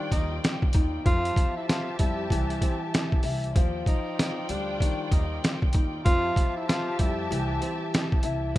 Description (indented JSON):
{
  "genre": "hip hop, boom-bap hip-hop",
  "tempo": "96 BPM",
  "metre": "4/4",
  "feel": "swing 63% on 16ths",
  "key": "unclear",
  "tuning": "A4 = 439 Hz",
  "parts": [
    { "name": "breathy tenor saxophone", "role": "melody", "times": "0.0-7.8 s", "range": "C4 to F4", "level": "-31 LUFS", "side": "right 1 dB", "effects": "high-pass filter, low-pass filter" },
    { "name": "dark grand piano", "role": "accompaniment", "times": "0.0-8.6 s", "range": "Eb3 to E4", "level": "-33 LUFS", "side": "left 3 dB", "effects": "high-pass filter, low-pass filter" },
    { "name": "clear studio string section", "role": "sustained chords", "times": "0.0-8.6 s", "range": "F4 to A5", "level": "-36 LUFS", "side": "left 1 dB", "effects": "high-pass filter, low-pass filter" },
    { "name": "upright bass", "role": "bass", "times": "0.1-8.6 s", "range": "C2 to F2", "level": "-31 LUFS", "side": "equal", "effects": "none" },
    { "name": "trip hop sampler-style drum kit", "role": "drums", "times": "0.1-8.6 s", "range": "hi-hat, kick drum, snare drum", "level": "-24 LUFS", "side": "equal", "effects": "none" }
  ],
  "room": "small room reverb",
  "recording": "rough home demo mix",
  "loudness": "-24 LUFS",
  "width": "side -16 dB against mid",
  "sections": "0.0-8.6 A section",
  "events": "none",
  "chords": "0.0 Ebmaj9; 1.1 Fmaj9; 3.6 Ebmaj9; 6.1 Fmaj9",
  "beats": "0.43 | 1.06 1.68 2.31 2.93 | 3.56 4.18 4.81 5.43 | 6.06 6.68 7.31 7.93 | 8.56"
}